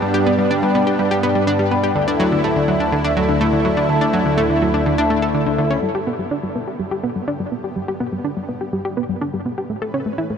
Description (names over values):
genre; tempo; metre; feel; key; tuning
ambient, sequencer-driven space music; 124 BPM; 4/4; straight; G lydian; A4 = 441 Hz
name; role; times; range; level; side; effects
lush unison pad; sustained chords; 0.0-10.4 s; D2 to B4; -20 LUFS; equal; chorus
vibraphone with soft mallets; arpeggios; 0.0-5.8 s; E4 to B5; -23 LUFS; moving between left 6 dB and right 2 dB; auto-pan, tape echo
analog pluck; riff; 0.0-10.3 s; D3 to A4; -20 LUFS; equal; chorus, cassette tape, tape echo
room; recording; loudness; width
wet huge ambient reverb, RT60 8.5 s; none; -16 LUFS; side -7 dB against mid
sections
0.0-5.8 A section; 5.8-10.4 B section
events
none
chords
0.0 G; 2.0 Dsus2; 5.8 G; 9.7 Aadd9